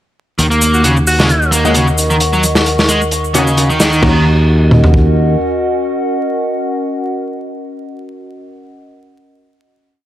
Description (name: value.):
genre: breakbeat, breaks.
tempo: 132 BPM.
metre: 4/4.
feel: swing 55% on 16ths.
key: Eb minor.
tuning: A4 = 439 Hz.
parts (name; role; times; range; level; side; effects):
warbly tape-like pad; sustained chords; 1.2-8.4 s; Db4 to Db6; -19 LUFS; equal; chorus, built-in reverb, sidechain pumping.
biting overdriven guitar; riff; 0.4-4.2 s; Db3 to Bb3; -14 LUFS; equal; low-pass filter, digital delay.
picked electric bass; bass; 0.4-5.4 s; Eb2; -14 LUFS; equal; low-pass filter.
crunchy breakbeat drum kit; drums; 0.4-5.1 s; crash cymbal, hi-hat, kick drum, snare drum, toms; -15 LUFS; equal; none.
shaker; drums; 0.4-4.0 s; none; -21 LUFS; left 1 dB; none.
clear alto saxophone; melody; 0.7-1.5 s; Gb4; -18 LUFS; equal; telephone sound, digital delay.
orchestra-hit-like synth stab; stabs; 1.6-8.4 s; Bb3 to Gb4; -19 LUFS; left 1 dB; built-in reverb, digital delay.
room: light reverb, small room ambience.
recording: vinyl crackle.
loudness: -10 LUFS.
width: side -13 dB against mid.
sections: 0.4-4.0 breakdown; 4.0-7.7 final chord.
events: none.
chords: 0.4 Ebm7.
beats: | 0.39 0.85 1.30 1.76 | 2.21 2.67 3.12 3.57 | 4.03 4.48 4.94 5.39 | 5.85 6.30 6.76 7.21.